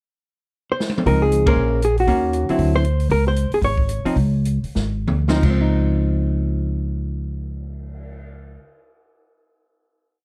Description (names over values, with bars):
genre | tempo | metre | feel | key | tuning
jazz, small-group swing and bop | 165-236 BPM | 4/4 | swing 60% on 8ths | Db major | A4 = 440 Hz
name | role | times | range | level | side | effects
hollow-body jazz guitar | melody | 0.7-5.1 s | Gb4 to Db5 | -24 LUFS | equal | none
open jazz drum kit | drums | 0.8-8.2 s | crash cymbal, cymbal swell, hi-hat, kick drum, ride cymbal, snare drum, toms | -26 LUFS | equal | none
hollow-body jazz guitar | accompaniment | 1.1-8.8 s | D3 to C5 | -26 LUFS | equal | none
upright bass | bass | 1.1-8.6 s | Ab1 to Eb2 | -23 LUFS | equal | none
room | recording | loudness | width
light reverb | dark, warm production | -20 LUFS | mono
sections
0.1-1.1 pickup bar; 1.1-5.4 A section; 5.4-8.3 final chord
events
drum fill 0.8, 4.8-5.4; band accent 1.4; slowing down 3.1-5.4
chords
0.1 N.C.; 1.1 Dbmaj9; 1.6 Bbm9; 2.1 Ebm7; 2.6 D9; 3.1 Db5; 5.4 Dbmaj9